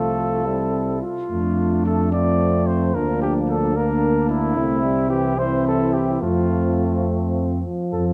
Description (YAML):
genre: classical, brass quintet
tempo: 72 BPM (dotted quarters)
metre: 6/8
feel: rubato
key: F major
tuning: A4 = 441 Hz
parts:
  - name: dark trumpet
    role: melody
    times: 0.0-7.1 s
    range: E4 to D5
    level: -27 LUFS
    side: equal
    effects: none
  - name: mellow flugelhorn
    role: second line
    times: 0.0-8.0 s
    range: C4 to A4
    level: -30 LUFS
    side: equal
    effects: none
  - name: mellow trombone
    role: accompaniment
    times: 0.0-8.1 s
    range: E3 to Bb3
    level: -29 LUFS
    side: equal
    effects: none
  - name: warm French horn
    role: accompaniment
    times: 0.0-8.1 s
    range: A3 to F4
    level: -28 LUFS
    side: equal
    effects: none
  - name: mellow tuba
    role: bass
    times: 0.0-8.1 s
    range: C2 to F2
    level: -25 LUFS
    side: equal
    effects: none
room: moderate recital hall reverb, RT60 1.6 s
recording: dark, warm production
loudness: -21 LUFS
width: mono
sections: 0.0-7.9 A section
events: none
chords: 0.5 C; 1.3 F; 2.9 Bb/D; 4.6 C; 6.2 F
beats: 0.46 | 1.30 2.12 | 2.94 3.76 | 4.56 5.38 | 6.22 7.07 | 7.92